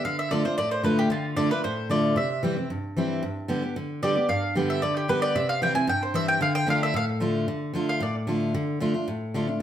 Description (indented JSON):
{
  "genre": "bluegrass",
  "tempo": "226 BPM",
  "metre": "4/4",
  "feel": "straight",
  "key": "D dorian",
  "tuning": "A4 = 441 Hz",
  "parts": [
    { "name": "mandolin", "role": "melody", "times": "0.0-8.2 s", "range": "F4 to G#5", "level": "-26 LUFS", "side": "equal", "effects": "slapback echo" },
    { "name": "picked steel-string acoustic guitar", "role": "accompaniment", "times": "0.0-9.6 s", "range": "G2 to G4", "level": "-25 LUFS", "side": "equal", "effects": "none" }
  ],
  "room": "wet studio reverb, RT60 0.8 s",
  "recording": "heard from further back in the room",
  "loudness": "-23 LUFS",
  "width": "side -10 dB against mid",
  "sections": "0.0-7.5 A section; 7.5-9.6 B section",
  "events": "mandolin solo 7.5-9.6",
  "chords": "0.0 Dm; 2.2 C; 3.2 G; 5.4 C; 6.4 Dm"
}